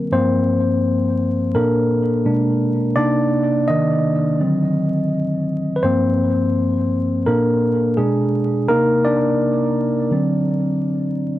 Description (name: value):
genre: hip hop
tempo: 84 BPM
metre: 4/4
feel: swing 59% on 16ths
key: G minor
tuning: A4 = 441 Hz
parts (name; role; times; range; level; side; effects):
- tine electric piano; solo; 0.0-11.4 s; G2 to Eb5; -16 LUFS; equal; low-pass filter, tape echo
room: moderate plate reverb, RT60 2.7 s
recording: dark, warm production, vinyl crackle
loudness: -16 LUFS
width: side -14 dB against mid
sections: 0.0-11.4 A section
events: tine electric piano solo 0.0-11.4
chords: 0.1 Gm7; 1.5 Bbmaj7; 2.3 Bb7b9/Cb; 3.0 Cm9; 4.4 D7b9; 5.8 Gm7; 7.3 Bbmaj7; 8.0 Bm6; 8.7 Cm9; 10.1 D7